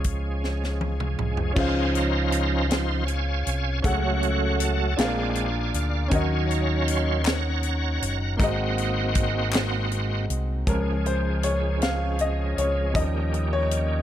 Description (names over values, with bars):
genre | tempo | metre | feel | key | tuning
slow gospel | 53 BPM (dotted quarters) | 6/8 | straight | Db major | A4 = 440 Hz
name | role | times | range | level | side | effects
clear grand piano | accompaniment | 0.0-14.0 s | Ab2 to Gb5 | -28 LUFS | left 1 dB | none
bright tonewheel organ | sustained chords | 0.0-14.0 s | Eb3 to C6 | -28 LUFS | right 3 dB | slow rotary speaker, overdrive, chorus vibrato
fingered electric bass | bass | 0.0-14.0 s | Gb1 to Eb2 | -26 LUFS | equal | none
tight funk drum kit | drums | 0.0-13.9 s | crash cymbal, hi-hat, kick drum, snare drum, toms | -27 LUFS | equal | none
group handclap | percussion | 7.3-9.9 s | none | -30 LUFS | left 6 dB | none
room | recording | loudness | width
light reverb, studio reverb | none | -22 LUFS | side -11 dB against mid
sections
0.0-1.6 A section; 1.6-10.7 B section; 10.7-14.0 C section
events
drum fill 0.4-1.6; tonewheel organ solo 1.6-10.7; grand piano solo 10.7-14.0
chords
0.0 Db; 1.6 Dbmaj7; 3.8 Gbmadd9/Db; 5.0 Bb7; 6.1 Ebm7; 8.4 Ab7; 10.7 Db; 13.0 Eb7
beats
0.43 | 1.57 2.71 | 3.85 4.98 | 6.12 7.26 | 8.40 9.54 | 10.68 11.81 | 12.95